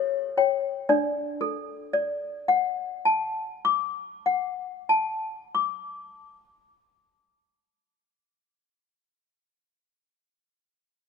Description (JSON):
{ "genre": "classical, lullaby for toy piano", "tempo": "37 BPM (dotted quarters)", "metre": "6/8", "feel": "straight", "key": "D major", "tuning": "A4 = 438 Hz", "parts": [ { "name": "toy piano", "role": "solo", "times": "0.0-8.8 s", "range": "D4 to D6", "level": "-24 LUFS", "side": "left 4 dB", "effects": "none" } ], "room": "light reverb", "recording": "close, detailed microphones", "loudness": "-24 LUFS", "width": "side -5 dB against mid", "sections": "0.9-7.3 A section", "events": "none", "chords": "0.0 A7 (rootless); 0.9 D" }